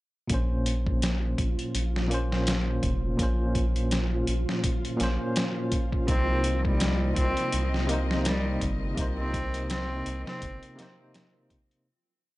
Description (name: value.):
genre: trip hop.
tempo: 83 BPM.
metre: 4/4.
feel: swing 57% on 16ths.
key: Bb minor.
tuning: A4 = 441 Hz.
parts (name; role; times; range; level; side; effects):
bell-like tine electric piano; accompaniment; 0.3-11.9 s; Bb2 to C5; -31 LUFS; equal; tremolo.
round analog bass; bass; 0.3-10.6 s; F1 to C2; -29 LUFS; equal; tube saturation.
trip hop sampler-style drum kit; drums; 0.3-11.9 s; hi-hat, kick drum, snare drum; -29 LUFS; equal; none.
flickering grainy texture; texture; 0.9-11.9 s; F3 to F4; -38 LUFS; equal; built-in reverb.
rich cello; melody; 6.1-10.7 s; G3 to C4; -31 LUFS; equal; tape echo.
warm chamber string section; sustained chords; 6.1-11.8 s; C4 to Eb5; -39 LUFS; left 2 dB; none.
room: digital ambience.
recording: dry, gritty hardware recording, nothing above 10.7 kHz.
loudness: -25 LUFS.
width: side -18 dB against mid.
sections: 0.3-11.9 groove.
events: fade-out 8.0-11.9.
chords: 0.3 Bbmadd9; 6.1 Cm7.